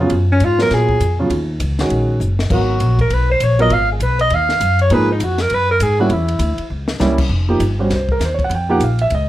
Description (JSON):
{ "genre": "modal jazz", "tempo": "200 BPM", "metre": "4/4", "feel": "swing 62% on 8ths", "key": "unclear", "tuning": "A4 = 441 Hz", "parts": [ { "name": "warm concert grand piano", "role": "accompaniment", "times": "0.0-9.3 s", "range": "Db3 to G5", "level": "-18 LUFS", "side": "right 2 dB", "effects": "none" }, { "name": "upright bass", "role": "bass", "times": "0.0-9.3 s", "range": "F1 to Bb2", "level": "-17 LUFS", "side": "equal", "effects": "none" }, { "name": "compact cocktail drum kit", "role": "drums", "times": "0.1-9.2 s", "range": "crash cymbal, hi-hat, kick drum, ride cymbal, snare drum", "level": "-26 LUFS", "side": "left 2 dB", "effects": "none" }, { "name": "dark alto saxophone", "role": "melody", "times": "0.3-6.7 s", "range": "Db4 to F5", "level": "-17 LUFS", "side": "equal", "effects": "plate reverb" } ], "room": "light reverb", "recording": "none", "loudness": "-14 LUFS", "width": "side -14 dB against mid", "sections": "0.0-7.3 A section; 7.3-9.3 A section", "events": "alto saxophone solo 0.0-7.3; drum fill 2.2, 6.7", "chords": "0.0 Ebm9; 2.5 Abm9; 6.1 C7b9; 7.3 F9sus4", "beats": "| 0.11 0.41 0.71 1.01 | 1.31 1.61 1.91 2.21 | 2.51 2.81 3.11 3.41 | 3.71 4.01 4.31 4.61 | 4.91 5.21 5.51 5.81 | 6.11 6.41 6.71 7.01 | 7.31 7.61 7.91 8.21 | 8.51 8.81 9.11" }